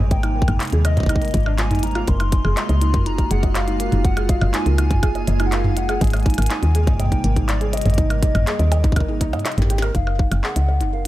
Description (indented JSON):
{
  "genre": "IDM",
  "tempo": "122 BPM",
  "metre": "4/4",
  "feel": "straight",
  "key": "unclear",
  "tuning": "A4 = 441 Hz",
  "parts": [
    { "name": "warbly nostalgic lead", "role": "melody", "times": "0.0-11.1 s", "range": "D5 to C6", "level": "-28 LUFS", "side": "left 2 dB", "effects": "lush chorus, tape echo" },
    { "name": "icy glass pad", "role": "sustained chords", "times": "0.0-9.9 s", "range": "C3 to Ab4", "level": "-28 LUFS", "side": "right 2 dB", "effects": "chorus, built-in reverb, vintage 12-bit sampler grit" },
    { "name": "felt-muted upright piano", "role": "arpeggios", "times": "0.0-11.1 s", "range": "D4 to Eb5", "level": "-28 LUFS", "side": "right 2 dB", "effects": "low-pass filter, tape echo" },
    { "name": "woody FM bass", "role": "bass", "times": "0.0-11.1 s", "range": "Gb1 to Ab2", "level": "-19 LUFS", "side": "equal", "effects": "none" },
    { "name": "electronic kick drum", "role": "drums", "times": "0.1-10.3 s", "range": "none", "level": "-19 LUFS", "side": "equal", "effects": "none" },
    { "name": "glitchy drum kit", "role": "drums", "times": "0.1-11.1 s", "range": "handclaps, hi-hat, percussion blips, snare drum, toms", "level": "-25 LUFS", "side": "equal", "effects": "none" }
  ],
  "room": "digital ambience",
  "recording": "echo-heavy mix",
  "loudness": "-16 LUFS",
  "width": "side -16 dB against mid",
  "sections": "0.0-9.9 A section; 9.9-11.1 B section",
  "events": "drum fill 9.5-9.9; filter sweep on felt piano 9.9-11.1",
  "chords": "0.0 Abmaj9; 2.1 Gbmaj9; 6.0 Abmaj9; 9.9 Gbmaj7"
}